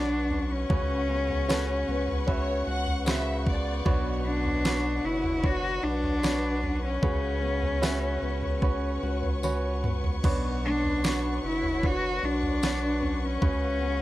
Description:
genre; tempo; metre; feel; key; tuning
pop ballad; 76 BPM; 4/4; straight; B minor; A4 = 440 Hz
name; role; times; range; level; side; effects
warm cello; melody; 0.0-14.0 s; C#4 to F#4; -29 LUFS; left 1 dB; slapback echo
clear baby grand piano; accompaniment; 0.0-14.0 s; B2 to E5; -34 LUFS; right 3 dB; none
warm studio string section; sustained chords; 0.0-14.0 s; B4 to C#6; -37 LUFS; left 3 dB; none
flamenco guitar; arpeggios; 0.0-14.0 s; B2 to F#4; -37 LUFS; left 4 dB; slapback echo
saturated sub bass; bass; 0.0-14.0 s; F#1 to C#2; -31 LUFS; equal; none
downlifter; sound effects; 0.0-3.9 s; none; barely audible; none; none
pop drum kit; drums; 0.3-13.6 s; crash cymbal, kick drum, snare drum, toms; -29 LUFS; right 1 dB; overdrive
warm symphonic violin section; second line; 1.5-4.0 s; A4 to F#5; -34 LUFS; left 1 dB; none
tambourine; percussion; 1.5-12.8 s; none; -41 LUFS; left 8 dB; none
room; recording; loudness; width
little or no reverb; dry, close 1970s-style studio recording; -25 LUFS; side -15 dB against mid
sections
0.0-14.0 A section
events
drum fill 9.4-10.2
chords
0.0 Bmadd9; 0.7 F#sus4/C#; 3.9 Bmadd9; 7.0 F#sus4/C#; 10.2 Bmadd9; 13.4 F#sus4/C#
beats
| 0.70 1.49 2.28 3.07 | 3.86 4.65 5.44 6.24 | 7.03 7.82 8.62 9.43 | 10.24 11.04 11.84 12.63 | 13.42

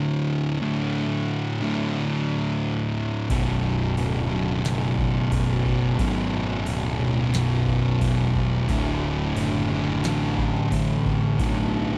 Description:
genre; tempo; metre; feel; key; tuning
stoner and doom metal; 89 BPM; 4/4; straight; unclear; A4 = 439 Hz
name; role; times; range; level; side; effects
thick fuzz guitar; riff; 0.0-12.0 s; B1 to D3; -28 LUFS; equal; distortion
thick fuzz guitar; riff; 0.0-12.0 s; B1 to D3; -28 LUFS; equal; distortion
fuzz picked electric bass; bass; 3.3-12.0 s; B0 to B1; -31 LUFS; equal; overdrive
booming analog drum machine; drums; 3.3-11.5 s; crash cymbal, kick drum, snare drum; -32 LUFS; equal; none
room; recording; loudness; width
little or no reverb; dry, close 1970s-style studio recording; -24 LUFS; mono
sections
0.0-12.0 A section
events
none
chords
0.0 D5; 3.3 Bm; 8.7 D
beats
| 0.61 1.28 1.95 2.62 | 3.30 3.97 4.64 5.32 | 5.99 6.67 7.34 8.02 | 8.69 9.37 10.04 10.71 | 11.39

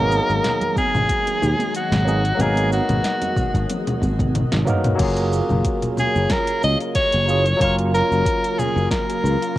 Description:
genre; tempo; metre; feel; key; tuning
sunset chillout; 92 BPM; 4/4; swing 54% on 16ths; F# major; A4 = 440 Hz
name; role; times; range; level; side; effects
edgy soprano saxophone; melody; 0.0-9.6 s; F#4 to D#5; -21 LUFS; equal; cassette tape, tape echo
barky tine electric piano; accompaniment; 0.0-9.6 s; F#3 to A#4; -25 LUFS; equal; overdrive, auto-pan, vintage 12-bit sampler grit, tape echo
soft string machine; sustained chords; 0.3-9.6 s; C#3 to D#5; -30 LUFS; left 1 dB; phaser, ensemble chorus
sustaining fretless electric bass; bass; 0.0-9.4 s; F#1 to D#2; -21 LUFS; equal; analog chorus
deep house drum kit; drums; 0.1-9.5 s; congas, crash cymbal, hi-hat, shaker, snare drum, toms; -25 LUFS; equal; overdrive, cassette tape
congas; percussion; 0.4-5.0 s; none; -30 LUFS; right 1 dB; none
electronic kick drum; drums; 0.8-9.6 s; none; -24 LUFS; equal; overdrive, cassette tape
room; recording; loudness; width
light reverb, digital ambience; home recording on cassette; -17 LUFS; side -15 dB against mid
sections
0.0-5.0 A section; 5.0-9.6 B section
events
filter sweep on tine electric piano 0.0-5.0; drum fill 3.7-5.0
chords
0.0 G#m7; 5.0 F#maj7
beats
0.44 1.09 1.74 | 2.40 3.05 3.70 4.35 | 5.00 5.66 6.31 6.96 | 7.61 8.27 8.92 9.57

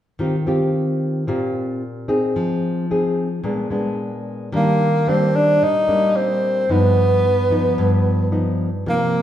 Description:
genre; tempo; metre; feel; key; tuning
bossa nova; 111 BPM; 4/4; straight; Eb major; A4 = 440 Hz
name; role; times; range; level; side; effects
nylon-string guitar; accompaniment; 0.2-9.2 s; G2 to Ab4; -19 LUFS; left 1 dB; none
breathy tenor saxophone; melody; 4.6-9.2 s; Bb3 to Eb4; -17 LUFS; right 1 dB; none
room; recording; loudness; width
wet large studio reverb, RT60 1.4 s; heard from further back in the room; -17 LUFS; side -11 dB against mid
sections
0.2-4.5 A section; 4.5-9.2 B section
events
none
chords
0.2 Eb69; 2.4 Fm7; 3.4 Bb7b9; 4.5 Ebmaj7; 6.7 Gaug7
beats
| 0.20 0.74 1.28 1.82 | 2.36 2.90 3.45 3.99 | 4.53 5.07 5.61 6.15 | 6.69 7.23 7.78 8.32 | 8.86

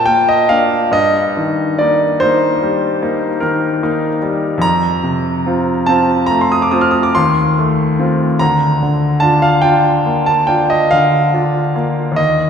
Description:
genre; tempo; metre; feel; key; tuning
classical, romantic nocturne for solo piano; 48 BPM (dotted quarters); 9/8; rubato; Bb major; A4 = 440 Hz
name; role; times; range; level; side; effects
clear grand piano; solo; 0.0-12.5 s; D2 to F6; -12 LUFS; equal; none
room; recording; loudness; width
wet church reverb, RT60 2.7 s; recorded in a church or concert hall; -12 LUFS; side -7 dB against mid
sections
0.0-12.5 A section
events
none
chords
0.0 Bb; 0.9 Eb/G; 4.6 F; 7.1 F7/Eb; 8.4 Bb/D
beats
| 0.93 2.20 3.43 | 4.62 5.87 7.15 | 8.40 9.64 10.92 | 12.19

